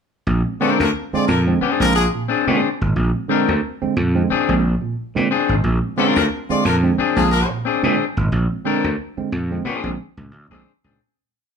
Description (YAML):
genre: funk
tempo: 90 BPM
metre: 4/4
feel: swing 56% on 16ths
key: Bb mixolydian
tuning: A4 = 440 Hz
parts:
  - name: tine electric piano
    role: stabs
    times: 0.3-11.0 s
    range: Bb2 to C4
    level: -23 LUFS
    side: right 5 dB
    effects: none
  - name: gritty slap bass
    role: bass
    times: 0.3-11.0 s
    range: Ab1 to Bb2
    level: -20 LUFS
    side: equal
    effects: overdrive
  - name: clear horn section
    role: second line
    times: 0.6-7.5 s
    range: D4 to D5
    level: -21 LUFS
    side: left 2 dB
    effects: none
  - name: electric guitar at the edge of break-up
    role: accompaniment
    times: 0.6-11.0 s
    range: C4 to Bb4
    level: -20 LUFS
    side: left 7 dB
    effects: none
room: moderate large studio reverb, RT60 0.8 s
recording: band playing live in one room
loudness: -16 LUFS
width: side -6 dB against mid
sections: 0.3-11.0 groove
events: fade-out 8.3-11.0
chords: 0.3 Bb9